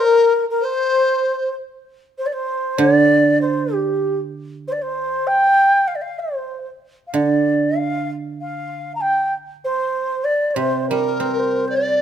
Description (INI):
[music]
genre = chinese traditional, Chinese chamber ensemble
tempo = 96 BPM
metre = 2/4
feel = straight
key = C shang mode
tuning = A4 = 440 Hz
[part]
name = xiao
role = melody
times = 0.0-12.0 s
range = G4 to Bb5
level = -18 LUFS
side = equal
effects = none
[part]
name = large dizi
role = second line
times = 0.0-1.5, 10.9-12.0 s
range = Bb4 to D5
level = -19 LUFS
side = left 2 dB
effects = none
[part]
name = guzheng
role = accompaniment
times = 2.8-4.6, 7.1-12.0 s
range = C3 to C4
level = -20 LUFS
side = right 5 dB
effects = none
[sound]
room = light reverb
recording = close, detailed microphones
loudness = -16 LUFS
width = side -9 dB against mid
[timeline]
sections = 0.0-1.9 A section; 1.9-11.9 B section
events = none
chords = none